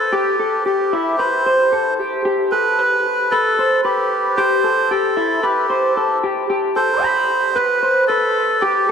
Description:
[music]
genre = indie pop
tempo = 113 BPM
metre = 4/4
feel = straight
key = unclear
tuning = A4 = 440 Hz
[part]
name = melodica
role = melody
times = 0.0-8.9 s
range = G4 to C5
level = -17 LUFS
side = right 1 dB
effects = analog delay
[part]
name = electric guitar through a small old amp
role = arpeggios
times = 0.0-8.9 s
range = E4 to B5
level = -18 LUFS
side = left 2 dB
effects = analog chorus, analog delay
[sound]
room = wet cathedral reverb, RT60 6.0 s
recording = dreamy mix soaked in reverb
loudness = -15 LUFS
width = side -7 dB against mid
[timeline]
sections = 0.0-8.9 A section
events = none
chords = 0.0 Cmaj7; 2.0 G; 4.4 Am7

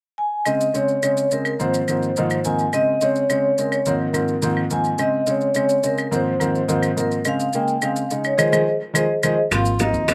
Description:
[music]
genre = Afro-Cuban jazz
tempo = 212 BPM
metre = 4/4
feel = straight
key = Ab major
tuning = A4 = 442 Hz
[part]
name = vibraphone with medium hard mallets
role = melody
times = 0.2-10.1 s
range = Ab4 to Ab5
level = -23 LUFS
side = equal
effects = none
[part]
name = warm grand piano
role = accompaniment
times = 0.5-10.1 s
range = Ab2 to Eb4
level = -24 LUFS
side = equal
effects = none
[part]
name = claves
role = percussion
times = 0.5-10.1 s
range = none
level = -28 LUFS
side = equal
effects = none
[part]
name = maracas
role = percussion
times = 0.5-10.1 s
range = none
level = -34 LUFS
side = equal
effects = none
[part]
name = warm tenor saxophone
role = second line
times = 9.5-10.1 s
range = C4 to F4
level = -28 LUFS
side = equal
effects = none
[part]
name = upright bass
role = bass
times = 9.5-10.1 s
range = Ab1 to Eb2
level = -25 LUFS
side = equal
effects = none
[part]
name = bongos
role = percussion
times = 9.5-10.1 s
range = none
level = -32 LUFS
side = equal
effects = none
[part]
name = congas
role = percussion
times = 9.5-10.1 s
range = none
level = -32 LUFS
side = equal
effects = none
[part]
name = timbales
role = percussion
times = 9.5-10.1 s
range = none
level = -26 LUFS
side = equal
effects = none
[sound]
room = light reverb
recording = recorded outdoors, with no room sound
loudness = -20 LUFS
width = mono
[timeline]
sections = 0.5-9.5 A section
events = band accent 8.4-9.5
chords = 0.5 Bbm11/Db (rootless); 1.6 Ab69; 2.7 Bbm11/Db (rootless); 3.9 Ab69; 5.0 Bbm11/Db (rootless); 6.1 Ab69; 7.3 Bbm7; 8.4 Ab6; 9.5 Ab69

